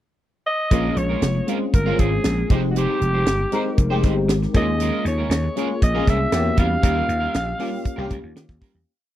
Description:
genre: polished 1980s jazz-funk pop.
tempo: 118 BPM.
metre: 4/4.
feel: straight.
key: unclear.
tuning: A4 = 440 Hz.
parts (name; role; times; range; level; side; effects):
growling alto saxophone; melody; 0.5-8.3 s; Gb4 to F5; -25 LUFS; right 1 dB; none.
FM electric piano; accompaniment; 0.7-8.9 s; Ab3 to Bb4; -25 LUFS; left 4 dB; ensemble chorus.
electric guitar at the edge of break-up; riff; 0.7-8.8 s; G3 to C5; -29 LUFS; right 6 dB; lush chorus.
vintage slap bass; bass; 0.7-8.8 s; F1 to Eb3; -22 LUFS; equal; none.
tight funk drum kit; drums; 0.7-8.7 s; hi-hat, kick drum, snare drum; -19 LUFS; equal; none.
room: little or no reverb.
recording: dry, close 1970s-style studio recording.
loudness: -18 LUFS.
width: side -12 dB against mid.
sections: 0.0-0.7 pickup bar; 0.7-8.9 pre-chorus.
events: fade-out 6.8-8.9.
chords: 0.0 N.C.; 0.7 Bbm7; 2.5 Fm9; 4.5 Eb9sus4; 6.3 Edim7; 6.8 Eb9.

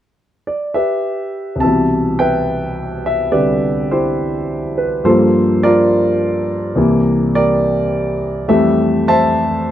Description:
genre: solo jazz.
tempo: 70 BPM.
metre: 4/4.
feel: swing 69% on 8ths.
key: C major.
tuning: A4 = 440 Hz.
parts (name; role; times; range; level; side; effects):
warm grand piano; solo; 0.5-9.7 s; C2 to A5; -13 LUFS; equal; none.
room: light reverb, studio reverb.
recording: dry, close 1970s-style studio recording.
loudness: -13 LUFS.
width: side -11 dB against mid.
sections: 0.0-1.6 A section; 1.6-9.7 B section.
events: none.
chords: 0.0 G6; 1.6 Cmaj7; 5.0 Gm9; 6.8 C7; 8.5 Fmaj9.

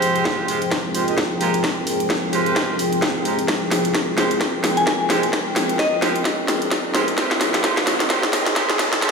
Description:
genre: bass house.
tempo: 130 BPM.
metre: 4/4.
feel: swing 58% on 16ths.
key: F minor.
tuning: A4 = 440 Hz.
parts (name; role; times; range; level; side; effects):
dark analog pad; sustained chords; 0.0-9.1 s; F3 to G5; -27 LUFS; left 2 dB; chorus, sidechain pumping.
mellow horn section; stabs; 0.0-9.1 s; Ab3 to Eb5; -24 LUFS; right 4 dB; sidechain pumping, ping-pong delay.
garage drum kit; drums; 0.0-9.1 s; hi-hat, snare drum; -21 LUFS; equal; small room ambience.
warbly tape-like pad; texture; 0.0-9.1 s; F4 to G5; -25 LUFS; left 1 dB; chorus, built-in reverb, sidechain pumping.
electronic kick drum; drums; 0.3-9.1 s; none; -26 LUFS; equal; high-pass filter on kick, small room ambience.
riser; sound effects; 5.0-9.1 s; none; -29 LUFS; equal; none.
soft synth bell; melody; 4.8-6.2 s; Eb5 to Ab5; -24 LUFS; left 2 dB; chorus, ping-pong delay.
room: wet plate reverb, RT60 2.1 s.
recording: played on a big sound system in a bare room, stone room reverb, high-pass filter.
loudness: -17 LUFS.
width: side -4 dB against mid.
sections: 0.0-9.1 A section.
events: build-up 0.0-9.1; drum fill 0.0-9.1; riser 5.0-9.1.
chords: 0.0 Fmadd9.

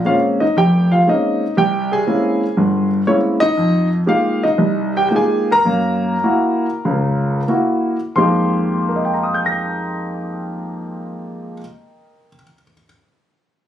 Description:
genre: solo jazz.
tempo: 84-120 BPM.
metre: 4/4.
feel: swing 68% on 8ths.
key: F minor.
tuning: A4 = 440 Hz.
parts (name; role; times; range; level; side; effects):
warm concert grand piano; solo; 0.0-12.8 s; F1 to Bb6; -15 LUFS; equal; none.
room: light reverb.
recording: recorded on a phone in the room, studio reverb.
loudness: -15 LUFS.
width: side -10 dB against mid.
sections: 0.0-8.2 A section; 8.2-13.7 B section.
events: slowing down 3.6-8.2.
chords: 0.0 Bbm9; 1.6 C7b9b13; 3.6 Fm11; 5.7 Gb7; 8.2 Fm11.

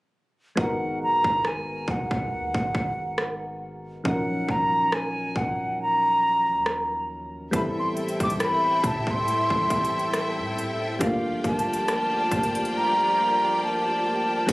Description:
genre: contemporary R&B.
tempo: 69 BPM.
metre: 4/4.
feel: swing 54% on 16ths.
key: unclear.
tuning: A4 = 440 Hz.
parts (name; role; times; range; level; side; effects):
concert flute; melody; 0.6-14.5 s; F5 to D6; -24 LUFS; equal; none.
soft electric-piano-like synth keys; accompaniment; 0.6-14.5 s; E#3 to A#4; -30 LUFS; equal; chorus.
warm 808-style bass; bass; 0.6-14.5 s; D#1 to A2; -38 LUFS; equal; none.
trap drum kit; drums; 0.6-14.5 s; crash cymbal, hi-hat, kick drum, rim click; -28 LUFS; equal; none.
rich symphonic string section; sustained chords; 7.5-14.5 s; E4 to G#5; -30 LUFS; left 1 dB; none.
flamenco guitar; arpeggios; 7.5-14.5 s; G2 to E4; -34 LUFS; equal; tape echo.
handpan; texture; 14.5 s; G#4; -29 LUFS; right 3 dB; none.
room: light reverb.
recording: recorded on a phone in the room, club reverb.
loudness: -22 LUFS.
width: side -20 dB against mid.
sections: 0.6-14.5 A section.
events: none.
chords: 0.6 G#m7; 4.1 D#m7; 7.5 Am7; 11.0 Gm7.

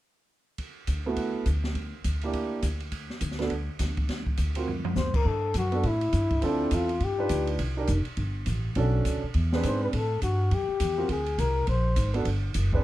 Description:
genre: jazz, small-group swing and bop.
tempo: 206 BPM.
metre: 4/4.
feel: swing 61% on 8ths.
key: G major.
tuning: A4 = 440 Hz.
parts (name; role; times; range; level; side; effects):
open jazz drum kit; drums; 0.6-12.8 s; crash cymbal, hi-hat, kick drum, ride cymbal, snare drum, toms; -33 LUFS; equal; none.
upright bass; bass; 0.9-12.8 s; F1 to A2; -27 LUFS; equal; none.
warm concert grand piano; accompaniment; 1.1-12.8 s; A3 to B4; -30 LUFS; right 4 dB; none.
breathy trumpet; melody; 5.0-7.5, 9.7-12.1 s; D4 to C5; -29 LUFS; left 3 dB; plate reverb.
room: little or no reverb.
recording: dark, warm production.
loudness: -25 LUFS.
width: side -15 dB against mid.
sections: 0.6-5.3 A section; 5.3-12.8 B section.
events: drum fill 4.7.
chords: 0.6 D69; 1.8 Gm6/D; 2.9 N.C.; 4.1 D7alt; 4.7 Bbadd9/D (rootless); 5.3 Gmaj7sus2; 6.4 Dm9; 7.0 G7b13; 7.6 C5; 8.8 Bm9; 9.3 E7b13; 9.9 Am7; 11.1 D7(#5, no3); 12.3 Gmaj7.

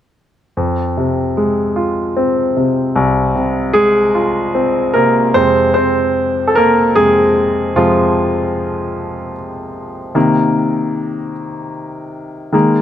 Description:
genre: pop.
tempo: 50 BPM (dotted quarters).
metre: 6/8.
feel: straight.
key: F minor.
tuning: A4 = 439 Hz.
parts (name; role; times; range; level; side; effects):
clear concert grand piano; accompaniment; 0.6-12.8 s; C2 to C5; -13 LUFS; equal; none.
room: light reverb.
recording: none.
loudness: -12 LUFS.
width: side -10 dB against mid.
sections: 0.6-5.4 A section; 5.4-12.8 B section.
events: grand piano solo 5.4-12.8.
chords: 0.6 Fm; 10.2 Cm7.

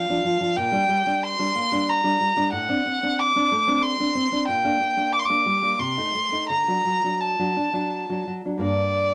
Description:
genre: romantic duo for violin and classical guitar.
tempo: 76-94 BPM.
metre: 3/4.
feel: rubato.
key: G minor.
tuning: A4 = 439 Hz.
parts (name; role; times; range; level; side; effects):
rich violin; melody; 0.0-9.1 s; D5 to D6; -24 LUFS; equal; none.
nylon-string guitar; accompaniment; 0.0-9.1 s; G2 to Eb4; -28 LUFS; equal; none.
room: moderate studio reverb, RT60 0.6 s.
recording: none.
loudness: -23 LUFS.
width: mono.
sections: 0.0-8.6 A section.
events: none.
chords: 0.0 Bb (rootless); 0.6 Gm/Bb; 2.5 D7/A; 4.5 Gm/Bb; 5.8 Adim/C; 6.5 D; 8.6 Gm.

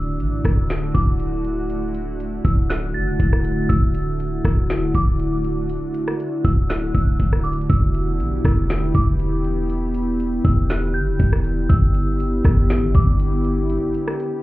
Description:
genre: hip hop, atmospheric cloud-rap.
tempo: 120 BPM.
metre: 4/4.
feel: half-time.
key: D major.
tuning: A4 = 436 Hz.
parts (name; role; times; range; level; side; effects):
glassy synth bell; melody; 0.0-13.2 s; D6 to A6; -32 LUFS; right 1 dB; chorus, tremolo, tape echo.
glassy FM pad; sustained chords; 0.0-14.4 s; D3 to G4; -23 LUFS; equal; ensemble chorus, built-in reverb, sidechain pumping.
warm 808-style bass; bass; 0.0-13.8 s; D1 to B1; -21 LUFS; equal; none.
trap drum kit; drums; 0.2-14.3 s; hi-hat, kick drum, rim click, snare drum; -19 LUFS; equal; none.
room: digital ambience.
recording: heard muffled through a wall, club reverb, EQ.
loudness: -17 LUFS.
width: side -17 dB against mid.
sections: 0.0-14.4 A section.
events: none.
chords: 0.0 Dadd9; 7.7 Em7; 11.7 G6.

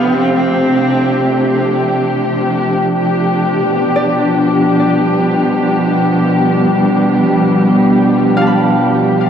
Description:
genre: ambient.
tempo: 72 BPM.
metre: 4/4.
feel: straight.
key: unclear.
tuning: A4 = 440 Hz.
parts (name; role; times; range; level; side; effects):
rich cello; melody; 0.0-1.6 s; B3 to C4; -16 LUFS; equal; ping-pong delay.
muted studio string section; sustained chords; 0.0-9.3 s; B2 to G4; -11 LUFS; equal; none.
Celtic harp; arpeggios; 0.0-9.3 s; D5 to B5; -21 LUFS; right 2 dB; ping-pong delay.
wind-like tuned noise texture; texture; 0.0-3.7 s; G6; -33 LUFS; equal; none.
room: wet concert hall reverb, RT60 2.5 s.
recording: worn, warbling old tape, cassette tape, warbly pitch drift.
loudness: -11 LUFS.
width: side -8 dB against mid.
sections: 0.0-3.7 A section; 3.7-9.3 B section.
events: none.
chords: 0.0 F69; 3.7 G7.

